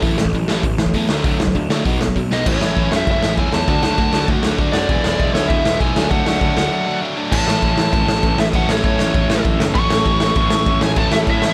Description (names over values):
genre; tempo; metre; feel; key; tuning
punk rock; 197 BPM; 4/4; straight; unclear; A4 = 442 Hz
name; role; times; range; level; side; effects
biting overdriven guitar; riff; 0.0-11.5 s; A2 to A4; -23 LUFS; equal; none
fuzz picked electric bass; bass; 0.0-11.5 s; E1 to A2; -24 LUFS; equal; overdrive
raw garage drum kit; drums; 0.0-11.5 s; crash cymbal, hi-hat, kick drum, snare drum; -21 LUFS; equal; none
high-gain lead guitar; melody; 2.3-11.5 s; C#5 to C#6; -24 LUFS; equal; distortion
room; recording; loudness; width
little or no reverb; none; -17 LUFS; mono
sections
0.0-2.5 A section; 2.5-7.3 B section; 7.3-11.5 C section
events
drum fill 2.3; break 6.7-7.3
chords
0.0 A5; 1.1 D; 1.9 B5; 2.5 A; 3.7 D; 4.9 E; 6.0 D; 7.3 A